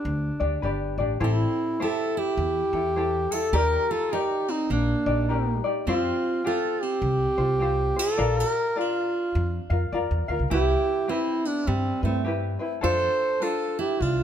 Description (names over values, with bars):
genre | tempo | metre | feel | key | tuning
Hawaiian | 103 BPM | 4/4 | swing 61% on 8ths | C major | A4 = 440 Hz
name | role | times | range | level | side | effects
mellow duduk | melody | 0.0-14.2 s | C4 to C5 | -26 LUFS | equal | none
tenor ukulele | accompaniment | 0.0-14.2 s | C4 to F5 | -30 LUFS | left 4 dB | none
upright bass | bass | 0.1-14.2 s | G1 to G2 | -26 LUFS | equal | none
fingerpicked steel-string acoustic guitar | second line | 1.2-14.2 s | G3 to A4 | -32 LUFS | right 7 dB | none
room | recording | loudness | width
light reverb | close, detailed microphones | -22 LUFS | side -9 dB against mid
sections
0.0-14.2 A section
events
none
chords
0.0 G; 1.2 Am7; 3.5 Ebmaj7; 5.9 Fsus2; 8.2 Bb; 10.5 Cmaj7; 12.8 F6